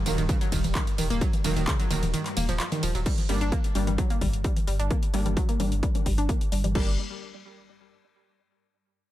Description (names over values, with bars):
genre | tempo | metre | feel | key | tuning
driving peak-time techno | 130 BPM | 4/4 | straight | G harmonic minor | A4 = 440 Hz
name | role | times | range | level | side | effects
swarming drone | drone | 0.0-3.1 s | G2 to G3 | -39 LUFS | equal | built-in reverb, sidechain pumping
analog pluck | riff | 0.1-7.0 s | C#3 to D4 | -31 LUFS | left 1 dB | chorus, tube saturation, sidechain pumping, ping-pong delay
rave stab | stabs | 0.1-6.9 s | Eb3 to D4 | -35 LUFS | right 1 dB | chorus, built-in reverb, sidechain pumping, ping-pong delay
saturated sub bass | bass | 0.1-7.0 s | Eb1 to G1 | -28 LUFS | equal | tube saturation, sidechain pumping, low-pass filter
techno drum kit | drums | 0.1-6.8 s | crash cymbal, handclaps, hi-hat, ride cymbal, tambourine, toms | -33 LUFS | left 1 dB | overdrive
electronic kick drum | drums | 0.3-6.8 s | none | -26 LUFS | equal | overdrive
room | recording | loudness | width
little or no reverb | none | -23 LUFS | side -14 dB against mid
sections
0.0-3.1 A section; 3.1-6.8 B section; 6.8-8.6 C section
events
drop 0.0-3.1; break 2.1-3.1; filter sweep on synth arpeggio sound 3.1-6.8; filter sweep on synth stab 3.1-6.8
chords
0.0 Ebm; 3.1 Gm